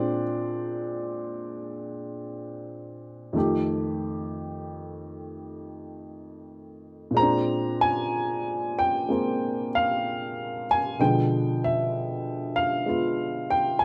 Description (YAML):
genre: solo jazz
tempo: 64 BPM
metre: 4/4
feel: swing 68% on 8ths, rubato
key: unclear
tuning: A4 = 441 Hz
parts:
  - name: dark upright piano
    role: solo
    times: 0.0-13.8 s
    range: F2 to Bb5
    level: -28 LUFS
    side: equal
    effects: none
room: light reverb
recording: none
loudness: -27 LUFS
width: mono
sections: 0.0-13.8 A section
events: none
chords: 0.0 Bb9; 3.4 F9; 7.2 Bb9; 11.0 Bdim7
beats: 0.55 1.48 2.41 | 3.35 4.29 5.23 6.19 | 7.16 8.12 9.09 10.04 | 10.99 11.93 12.87 13.80